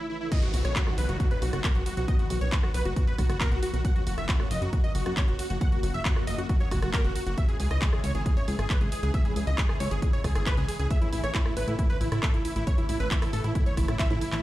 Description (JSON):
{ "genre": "uplifting trance", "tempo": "136 BPM", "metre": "4/4", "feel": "straight", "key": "B major", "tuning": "A4 = 440 Hz", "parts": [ { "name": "dense compressed supersaw", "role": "melody", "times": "0.0-14.4 s", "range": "E4 to F#5", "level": "-34 LUFS", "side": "right 1 dB", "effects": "sidechain pumping, digital delay" }, { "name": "analog string pad", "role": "sustained chords", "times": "0.0-14.4 s", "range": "C#3 to F#4", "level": "-38 LUFS", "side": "left 1 dB", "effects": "ensemble chorus, phaser, sidechain pumping" }, { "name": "plucky analog bass", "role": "bass", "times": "0.0-14.4 s", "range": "F#1 to A2", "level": "-29 LUFS", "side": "equal", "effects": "sidechain pumping" }, { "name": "wide unison pluck", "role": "second line", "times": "0.3-14.4 s", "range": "E4 to F#5", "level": "-38 LUFS", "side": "equal", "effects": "sidechain pumping, digital delay" }, { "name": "electronic kick drum", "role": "drums", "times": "0.3-14.1 s", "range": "none", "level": "-26 LUFS", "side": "equal", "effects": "none" }, { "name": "techno drum kit", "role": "drums", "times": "0.3-14.4 s", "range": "crash cymbal, handclaps, hi-hat, rim click", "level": "-35 LUFS", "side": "equal", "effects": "none" }, { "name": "downlifter", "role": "sound effects", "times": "0.3-3.8 s", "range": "none", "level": "-40 LUFS", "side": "equal", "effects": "none" } ], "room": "little or no reverb", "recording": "played on a big sound system in a bare room, large studio reverb", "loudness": "-24 LUFS", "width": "side -16 dB against mid", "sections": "0.3-14.4 A section", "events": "drop 0.3-14.4; drum fill 14.0-14.4", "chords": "0.3 B; 3.8 F#; 7.4 C#m; 10.9 A" }